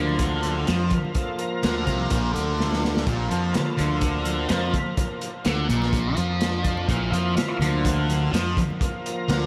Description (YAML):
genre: psychedelic rock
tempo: 125 BPM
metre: 4/4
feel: straight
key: unclear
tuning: A4 = 444 Hz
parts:
  - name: bright tonewheel organ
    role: sustained chords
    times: 0.0-9.5 s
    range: F3 to Bb4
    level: -32 LUFS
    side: equal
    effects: overdrive, chorus vibrato, slow rotary speaker
  - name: thick fuzz guitar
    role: riff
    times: 0.0-9.5 s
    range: Bb2 to F3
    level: -28 LUFS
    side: equal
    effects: distortion, phaser
  - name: fuzz fingered electric bass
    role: bass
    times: 0.0-9.5 s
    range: Bb1 to F2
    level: -29 LUFS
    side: equal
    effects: overdrive
  - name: congas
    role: percussion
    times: 0.1-8.9 s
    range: none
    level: -40 LUFS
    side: equal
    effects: none
  - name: crunchy breakbeat drum kit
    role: drums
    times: 0.2-9.4 s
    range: hi-hat, kick drum, snare drum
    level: -30 LUFS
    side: equal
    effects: none
room: moderate huge ambient reverb, RT60 9.7 s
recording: dreamy mix soaked in reverb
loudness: -24 LUFS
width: mono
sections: 0.0-9.5 A section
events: tonewheel organ solo 0.0-9.5; drum fill 2.6-3.1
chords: 0.0 Bb5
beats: 0.20 0.68 | 1.16 1.64 2.12 2.60 | 3.07 3.55 4.03 4.51 | 4.99 5.46 5.94 6.42 | 6.90 7.38 7.86 8.34 | 8.81 9.29